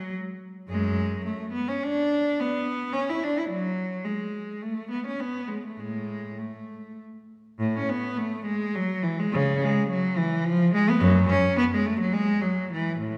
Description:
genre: classical, baroque-style suite movement for unaccompanied cello.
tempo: 106 BPM.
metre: 3/4.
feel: rubato.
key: A major.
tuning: A4 = 440 Hz.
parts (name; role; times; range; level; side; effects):
rich cello; solo; 0.0-13.2 s; F#2 to E4; -26 LUFS; equal; none.
room: wet recital hall reverb, RT60 1.7 s.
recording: heard from further back in the room.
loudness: -26 LUFS.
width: mono.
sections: 0.0-7.6 A section; 7.6-13.2 B section.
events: none.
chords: none.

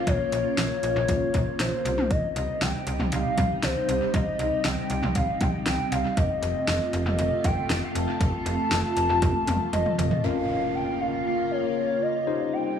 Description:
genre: synth-pop.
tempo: 118 BPM.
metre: 4/4.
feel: straight.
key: Bb dorian.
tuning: A4 = 440 Hz.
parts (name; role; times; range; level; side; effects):
hollow clarinet-like synth lead; melody; 0.0-12.8 s; C5 to A5; -28 LUFS; left 1 dB; chorus, dub echo.
soft string machine; sustained chords; 0.0-12.8 s; C3 to F4; -30 LUFS; equal; phaser, ensemble chorus.
slap-like FM bass; bass; 0.1-10.1 s; F1 to C2; -28 LUFS; equal; none.
deep house drum kit; drums; 0.1-10.2 s; hi-hat, kick drum, snare drum, toms; -28 LUFS; equal; overdrive, dub echo.
tine electric piano; accompaniment; 10.2-12.8 s; Db4 to C5; -29 LUFS; left 5 dB; medium stereo tremolo, dub echo.
impact; sound effects; 10.2-12.3 s; none; -36 LUFS; equal; none.
room: light reverb.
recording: echo-heavy mix, small room reverb.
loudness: -23 LUFS.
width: side -8 dB against mid.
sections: 0.0-10.2 A section; 10.2-12.8 B section.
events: drum fill 9.2-10.2; impact 10.2-12.3.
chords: 0.0 Bbm; 1.9 Cm; 6.2 F; 10.2 Bbm; 12.3 Cm.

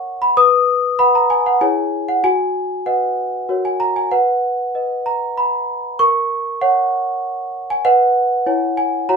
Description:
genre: classical, lullaby for celesta.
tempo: 96 BPM.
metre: 3/4.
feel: straight.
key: B major.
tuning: A4 = 440 Hz.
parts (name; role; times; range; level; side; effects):
celesta; solo; 0.0-9.2 s; E4 to D#6; -15 LUFS; equal; none.
room: wet studio reverb, RT60 0.5 s.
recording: band playing live in one room.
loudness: -15 LUFS.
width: side -5 dB against mid.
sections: 0.0-9.2 A section.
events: none.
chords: 0.4 B; 1.6 C#m/E; 2.2 B/F#; 3.5 F#; 4.1 B; 6.0 F#/A#; 7.8 B; 8.5 C#m/E.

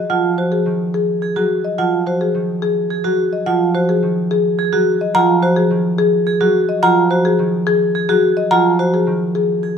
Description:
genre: classical, minimalist pattern music.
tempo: 107 BPM.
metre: 3/4.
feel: straight.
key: Ab mixolydian.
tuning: A4 = 441 Hz.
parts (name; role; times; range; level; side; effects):
marimba with medium mallets; melody; 0.0-9.5 s; Ab4 to Gb5; -18 LUFS; left 4 dB; none.
concert harp; accompaniment; 0.0-9.8 s; Eb3 to Gb3; -19 LUFS; right 1 dB; none.
vibraphone with medium hard mallets; arpeggios; 0.1-9.8 s; F4 to Ab4; -18 LUFS; right 4 dB; none.
xylophone with soft rubber mallets; arpeggios; 5.1-8.7 s; Bb5; -18 LUFS; left 3 dB; none.
room: moderate large studio reverb, RT60 1.3 s.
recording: none.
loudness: -14 LUFS.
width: side -7 dB against mid.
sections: 0.0-9.8 A section.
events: none.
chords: 0.0 Ab7(no3).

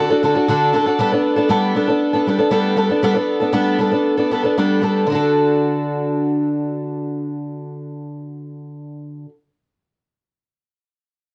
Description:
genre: rock.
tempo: 117 BPM.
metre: 4/4.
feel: straight.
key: D major.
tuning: A4 = 438 Hz.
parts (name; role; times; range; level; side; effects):
picked twelve-string acoustic guitar; solo; 0.0-9.3 s; D3 to A4; -19 LUFS; equal; cassette tape.
room: light reverb.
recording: home recording on cassette.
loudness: -18 LUFS.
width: mono.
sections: 1.0-5.1 A section; 5.1-9.2 B section.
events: none.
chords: 0.0 D; 1.0 Gadd9; 5.1 D.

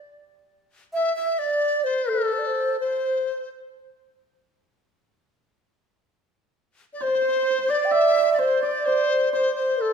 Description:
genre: chinese traditional, Chinese chamber ensemble.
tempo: 64 BPM.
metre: 2/4.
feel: rubato.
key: unclear.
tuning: A4 = 440 Hz.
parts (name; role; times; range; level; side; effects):
low xiao; melody; 0.9-3.5, 6.9-9.9 s; A4 to G5; -24 LUFS; right 2 dB; none.
large dizi; second line; 0.9-3.5, 6.9-9.9 s; A4 to E5; -25 LUFS; left 7 dB; none.
hammered dulcimer; second line; 7.0-9.9 s; C5 to E5; -24 LUFS; right 6 dB; none.
room: moderate scoring stage reverb, RT60 1.7 s.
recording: minimal, uncompressed stereo recording.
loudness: -20 LUFS.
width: side -6 dB against mid.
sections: 0.0-9.9 A section.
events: none.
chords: none.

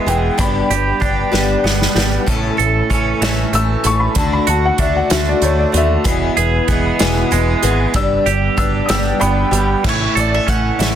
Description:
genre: folk rock and heartland rock.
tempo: 63 BPM (dotted quarters).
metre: 6/8.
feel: straight.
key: A major.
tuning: A4 = 440 Hz.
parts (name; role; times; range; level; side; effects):
dark upright piano; second line; 0.0-9.8 s; C#5 to E6; -21 LUFS; left 1 dB; none.
picked twelve-string acoustic guitar; accompaniment; 0.0-11.0 s; E2 to A4; -20 LUFS; left 5 dB; none.
tonewheel organ; sustained chords; 0.0-11.0 s; A3 to B4; -28 LUFS; right 1 dB; none.
twangy electric guitar; riff; 0.0-11.0 s; E2 to A4; -20 LUFS; right 8 dB; wide subtle chorus.
deep dub picked electric bass; bass; 0.1-11.0 s; E1 to D#2; -19 LUFS; equal; none.
unplugged drum kit; drums; 0.1-11.0 s; crash cymbal, hi-hat, kick drum, snare drum; -20 LUFS; right 1 dB; none.
mandolin; melody; 9.9-11.0 s; C#5 to F#5; -20 LUFS; equal; slapback echo.
room: light reverb.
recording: dense, heavily limited modern master.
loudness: -13 LUFS.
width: side -10 dB against mid.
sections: 0.0-9.8 A section; 9.8-11.0 B section.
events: upright piano solo 0.0-9.8; drum fill 1.3-2.3.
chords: 0.4 G; 2.3 A; 4.2 D; 6.1 E; 7.9 G; 9.8 A.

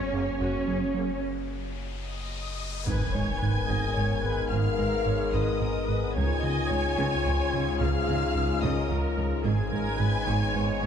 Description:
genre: cinematic, hybrid orchestral and electronic film score.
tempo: 73 BPM (dotted quarters).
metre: 6/8.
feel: straight.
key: G# dorian.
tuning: A4 = 440 Hz.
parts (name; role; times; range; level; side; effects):
warm symphonic violin section; melody; 0.0-10.9 s; G#5 to G#6; -36 LUFS; equal; none.
warm symphonic violin section; second line; 0.0-10.9 s; C#5 to G#5; -36 LUFS; left 4 dB; none.
rich symphonic viola section; accompaniment; 0.0-10.9 s; F#4 to D#5; -36 LUFS; right 1 dB; none.
metallic inharmonic drone; sustained chords; 0.0-10.9 s; F#3 to C#5; -37 LUFS; left 2 dB; chorus, built-in reverb.
round analog bass; riff; 0.0-10.9 s; C#2 to G#3; -32 LUFS; right 2 dB; none.
sub bass with octave; bass; 0.0-10.9 s; F#1 to C#2; -34 LUFS; left 1 dB; none.
warm studio cello section; bass; 0.0-10.9 s; G#2 to C#4; -35 LUFS; right 3 dB; none.
riser and impact; sound effects; 1.4-4.5 s; none; -38 LUFS; left 1 dB; none.
clear trombone section; sustained chords; 0.1-10.9 s; F#2 to A#3; -38 LUFS; right 3 dB; none.
mellow French horn section; sustained chords; 0.1-10.9 s; B3 to A#4; -33 LUFS; left 6 dB; none.
rich symphonic double bass section; bass; 0.4-10.9 s; F#1 to C#2; -32 LUFS; right 2 dB; none.
room: moderate scoring stage reverb, RT60 2.0 s.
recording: dark, warm production.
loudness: -25 LUFS.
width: side -8 dB against mid.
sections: 0.0-2.9 A section; 2.9-10.9 B section.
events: riser 1.4-2.9; break 1.2-2.9; impact 2.9-4.5.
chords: 0.0 F#add9; 2.9 G#madd9; 6.2 C#; 9.4 G#m.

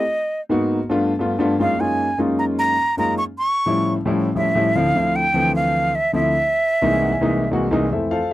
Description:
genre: jazz.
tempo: 152 BPM.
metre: 4/4.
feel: straight.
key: unclear.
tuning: A4 = 440 Hz.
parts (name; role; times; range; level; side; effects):
breathy concert flute; melody; 0.0-7.5 s; Eb5 to C#6; -19 LUFS; right 1 dB; none.
warm concert grand piano; accompaniment; 0.5-8.3 s; C2 to G#5; -19 LUFS; left 1 dB; none.
room: little or no reverb.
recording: dry, close 1970s-style studio recording.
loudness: -17 LUFS.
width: side -15 dB against mid.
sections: 0.0-7.9 A section.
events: grand piano fill 6.7-7.9.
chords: 0.0 Abm7; 0.8 G9; 1.6 Gbmaj13; 3.2 A7b13; 4.8 Dm9; 6.3 C7alt.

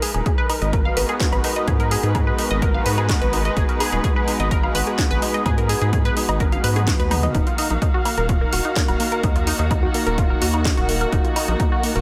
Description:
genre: melodic techno.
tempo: 127 BPM.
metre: 4/4.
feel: straight.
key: unclear.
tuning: A4 = 440 Hz.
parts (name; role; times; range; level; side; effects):
muted studio string section; sustained chords; 0.0-12.0 s; Eb3 to F5; -29 LUFS; equal; sidechain pumping.
tight sequenced synth; arpeggios; 0.0-12.0 s; Bb3 to F5; -28 LUFS; equal; chorus, sidechain pumping, dub echo.
house drum kit; drums; 0.0-12.0 s; hi-hat, snare drum, toms, woodblock; -28 LUFS; equal; overdrive, studio reverb.
round analog bass; bass; 0.1-12.0 s; Eb1 to Ab2; -25 LUFS; equal; sidechain pumping.
electronic kick drum; drums; 0.3-11.7 s; none; -24 LUFS; equal; studio reverb.
brassy analog pad; stabs; 0.9-12.0 s; Ab3 to Gb4; -31 LUFS; equal; chorus, sidechain pumping, dub echo.
room: light reverb.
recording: none.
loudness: -20 LUFS.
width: mono.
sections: 0.0-12.0 A section.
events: drum fill 6.4-7.3.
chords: 0.0 Abm7; 7.3 Ebm.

